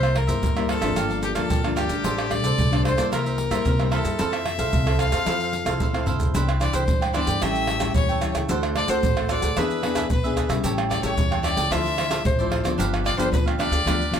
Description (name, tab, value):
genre	samba and choro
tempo	112 BPM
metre	4/4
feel	straight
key	F major, C major from 6.3 s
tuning	A4 = 440 Hz
part	clear fiddle	melody	0.0-14.2 s	G4 to F5	-26 LUFS	left 3 dB	plate reverb
part	cavaquinho	accompaniment	0.0-14.2 s	D4 to G5	-30 LUFS	right 5 dB	none
part	nylon-string guitar	accompaniment	0.0-14.2 s	G2 to A4	-27 LUFS	left 2 dB	none
part	upright bass	bass	0.0-14.2 s	G1 to C3	-27 LUFS	equal	none
part	maracas, pandeiro, tamborim and surdo	percussion	0.0-14.2 s	none	-25 LUFS	right 2 dB	none
room	moderate small room reverb, RT60 0.6 s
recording	none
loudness	-20 LUFS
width	side -8 dB against mid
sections	0.0-6.3 A section; 6.3-14.2 B section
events	drum fill 5.9-6.3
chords	0.0 C7; 1.0 Gm7; 2.0 F69/A; 3.1 C7; 4.2 Fmaj7; 6.3 Cmaj9; 7.4 A7; 8.5 D7; 9.6 E7; 10.6 A7; 11.7 Dm9; 12.8 G7